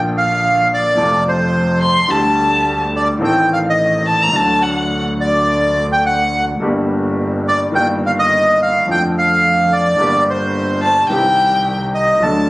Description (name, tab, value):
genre	tango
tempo	107 BPM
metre	4/4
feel	rubato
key	G minor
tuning	A4 = 440 Hz
part	bright upright piano	accompaniment	0.0-12.5 s	G1 to A4	-20 LUFS	left 1 dB	none
part	rich double bass	bass	0.0-12.5 s	G1 to F2	-22 LUFS	equal	none
part	bandoneon	melody	0.2-12.5 s	C5 to A5	-14 LUFS	right 1 dB	plate reverb
part	warm violin	second line	1.8-5.0, 10.8-11.8 s	F#5 to C6	-14 LUFS	left 1 dB	none
room	moderate studio reverb, RT60 0.7 s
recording	recorded on a phone in the room, club reverb, nothing above 10.7 kHz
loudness	-12 LUFS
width	side -19 dB against mid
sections	0.0-12.5 A section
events	none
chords	0.0 Bb; 1.0 F; 2.1 Dsus4; 3.2 Adim; 4.3 D; 6.6 Gm; 7.7 Ebadd9/G; 8.9 F6; 10.0 Gm; 11.1 Cm